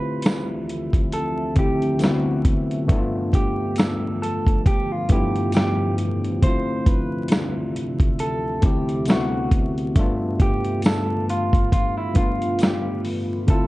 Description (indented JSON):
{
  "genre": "lo-fi hip hop",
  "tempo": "68 BPM",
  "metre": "4/4",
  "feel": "swing 56% on 16ths",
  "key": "unclear",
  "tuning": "A4 = 440 Hz",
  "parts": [
    { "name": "electric guitar through a small old amp", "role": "melody", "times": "0.0-13.7 s", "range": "E4 to C5", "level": "-28 LUFS", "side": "right 1 dB", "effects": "none" },
    { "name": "tine electric piano", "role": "accompaniment", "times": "0.0-13.7 s", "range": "G2 to G4", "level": "-24 LUFS", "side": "left 1 dB", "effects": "overdrive, cassette tape" },
    { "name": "deep dark ambient pad", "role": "sustained chords", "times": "0.4-13.7 s", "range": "D2 to E5", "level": "-30 LUFS", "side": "right 1 dB", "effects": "chorus, built-in reverb" },
    { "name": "dusty soul sampler-style drum kit", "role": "drums", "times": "0.2-13.7 s", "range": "hi-hat, kick drum, snare drum", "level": "-20 LUFS", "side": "equal", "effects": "none" },
    { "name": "tambourine", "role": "percussion", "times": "0.3-12.8 s", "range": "none", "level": "-44 LUFS", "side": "right 3 dB", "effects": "none" }
  ],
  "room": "light reverb",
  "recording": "dark, warm production, vinyl crackle, nothing above 10.8 kHz",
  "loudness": "-19 LUFS",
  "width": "side -18 dB against mid",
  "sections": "0.0-13.5 A section",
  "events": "none",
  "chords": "0.0 Dm9; 2.0 D13; 2.9 G9; 6.4 Dm9; 9.1 D13; 10.0 G9"
}